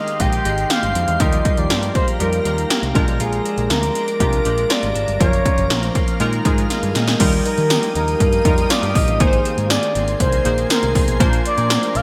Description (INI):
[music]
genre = 1980s-style pop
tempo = 120 BPM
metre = 4/4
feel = straight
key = Eb major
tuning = A4 = 438 Hz
[part]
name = expressive synth lead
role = melody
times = 0.0-12.0 s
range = Ab4 to G5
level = -24 LUFS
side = equal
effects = chorus
[part]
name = warm analog keys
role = accompaniment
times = 0.0-12.0 s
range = F3 to Eb5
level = -26 LUFS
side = equal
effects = chorus
[part]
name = shimmering ambient pad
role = sustained chords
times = 0.0-12.0 s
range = Ab3 to Eb6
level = -31 LUFS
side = equal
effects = chorus, built-in reverb
[part]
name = direct-recorded clean electric guitar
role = riff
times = 0.0-12.0 s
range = Eb3 to Bb4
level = -31 LUFS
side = equal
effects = lush chorus
[part]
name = 80s electronic pad drums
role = drums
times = 0.1-12.0 s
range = crash cymbal, hi-hat, kick drum, snare drum, tambourine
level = -21 LUFS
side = equal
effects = gated reverb
[part]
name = picked electric bass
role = bass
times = 0.2-12.0 s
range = Gb1 to Eb3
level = -25 LUFS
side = equal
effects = none
[sound]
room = moderate plate reverb, RT60 2.6 s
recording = bright 1980s-style digital production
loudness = -18 LUFS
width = mono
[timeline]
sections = 0.0-7.2 A section; 7.2-12.0 B section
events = drum fill 6.7-7.2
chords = 0.0 Abmaj7; 1.2 Ebadd9; 3.0 Bb7; 5.2 Gbmaj7; 6.2 Bb7sus4; 7.2 Ebadd9; 9.2 Abadd9; 11.2 Bbadd9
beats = 0.20 0.70 | 1.20 1.70 2.20 2.70 | 3.20 3.70 4.20 4.70 | 5.20 5.70 6.20 6.70 | 7.20 7.70 8.20 8.70 | 9.20 9.70 10.20 10.70 | 11.20 11.70